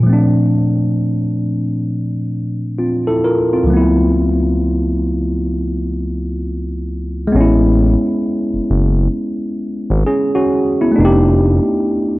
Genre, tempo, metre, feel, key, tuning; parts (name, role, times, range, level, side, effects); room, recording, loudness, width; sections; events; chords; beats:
lo-fi hip hop; 66 BPM; 4/4; swing 63% on 16ths; A4 = 442 Hz
tine electric piano; accompaniment; 0.0-12.2 s; C#2 to Bb4; -14 LUFS; equal; cassette tape, low-pass filter
smooth synth bass; bass; 7.3-11.6 s; F1 to A1; -13 LUFS; equal
light reverb; cassette tape; -13 LUFS; side -19 dB against mid
0.0-7.3 A section; 7.3-12.2 B section
filter sweep on tine electric piano 0.0-7.3
0.1 Bbmaj7; 3.7 C#7alt; 7.3 Amaj7; 11.0 F13
| 0.06 0.97 1.88 2.79 | 3.70 4.61 5.52 6.42 | 7.33 8.24 9.15 10.06 | 10.97 11.88